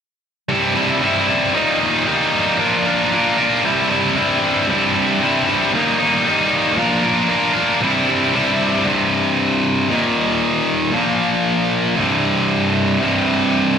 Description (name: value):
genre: rock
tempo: 115 BPM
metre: 4/4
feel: straight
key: unclear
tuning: A4 = 440 Hz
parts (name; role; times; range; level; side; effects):
- tight distorted guitar; solo; 0.5-13.8 s; C2 to Bb4; -14 LUFS; equal; distortion
room: light reverb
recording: live gig heard through the venue's PA, club reverb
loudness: -15 LUFS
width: side -7 dB against mid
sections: 0.5-8.9 A section; 8.9-13.8 B section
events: none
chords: 0.5 C; 1.6 Eb; 2.6 Bb; 3.6 C; 5.7 Eb; 6.8 Bb; 7.8 C; 8.9 C5; 9.9 Eb5; 10.9 Bb5; 12.0 C5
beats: | 0.50 1.03 1.55 2.07 | 2.60 3.12 3.64 4.16 | 4.68 5.21 5.73 6.25 | 6.77 7.29 7.81 8.33 | 8.85 9.37 9.89 10.41 | 10.93 11.45 11.97 12.49 | 13.01 13.53